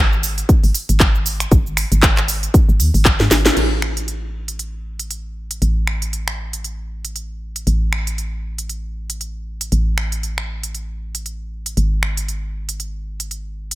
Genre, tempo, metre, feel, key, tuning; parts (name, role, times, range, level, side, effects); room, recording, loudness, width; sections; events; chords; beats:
deep house; 117 BPM; 4/4; swing 57% on 16ths; A4 = 439 Hz
woody FM bass; bass; 0.0-13.8 s; G#1 to G#2; -21 LUFS; equal; sidechain pumping
house drum kit; drums; 0.1-13.8 s; crash cymbal, finger snaps, handclaps, hi-hat, shaker, snare drum; -19 LUFS; equal; studio reverb
electronic kick drum; drums; 0.5-3.2 s; -14 LUFS; equal; studio reverb
little or no reverb; -16 LUFS; side -17 dB against mid
0.0-3.6 A section; 3.6-13.8 B section
drum fill 3.2-3.6; band accent 3.4
0.49 1.00 | 1.51 2.03 2.54 3.05 | 3.57 4.08 4.59 5.11 | 5.62 6.13 6.64 7.16 | 7.67 8.18 8.69 9.21 | 9.72 10.23 10.75 11.26 | 11.77 12.28 12.80 13.31